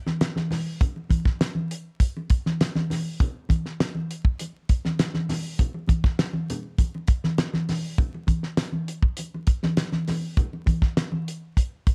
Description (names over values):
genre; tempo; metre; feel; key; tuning
funk; 100 BPM; 4/4; straight; none; none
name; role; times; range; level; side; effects
damped 70s drum kit; drums; 0.1-11.9 s; hi-hat, kick drum, snare drum; -25 LUFS; equal; none
congas; percussion; 0.1-11.3 s; none; -31 LUFS; equal; none
room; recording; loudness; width
light reverb; dark, warm production, vinyl crackle; -25 LUFS; mono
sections
0.0-11.9 A section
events
none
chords
none